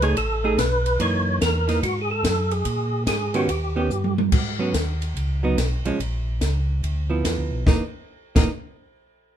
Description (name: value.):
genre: soul jazz organ trio.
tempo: 144 BPM.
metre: 4/4.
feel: swing 65% on 8ths.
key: F# mixolydian.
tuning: A4 = 438 Hz.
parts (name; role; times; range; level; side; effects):
percussive tonewheel organ; melody; 0.0-4.1 s; F#4 to C#5; -24 LUFS; right 1 dB; slow rotary speaker, chorus vibrato.
hollow-body jazz guitar; accompaniment; 0.0-8.5 s; D#3 to G#4; -25 LUFS; right 3 dB; none.
mellow tonewheel organ; bass; 0.0-8.5 s; F#1 to A#2; -24 LUFS; equal; slow rotary speaker.
compact cocktail drum kit; drums; 0.0-8.4 s; crash cymbal, hi-hat, kick drum, ride cymbal, snare drum, toms; -24 LUFS; equal; none.
room: moderate studio reverb, RT60 0.7 s.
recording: minimal, uncompressed stereo recording.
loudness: -20 LUFS.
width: side -10 dB against mid.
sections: 0.0-4.3 A section; 4.3-7.7 B section; 7.7-9.3 C section.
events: drum fill 3.9-4.3.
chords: 0.0 B13; 1.0 F#13; 2.7 G#m11; 3.5 D#7b13; 4.3 G#m7; 5.2 C#9sus4; 6.0 A#m; 6.8 Dm69; 7.7 F#6.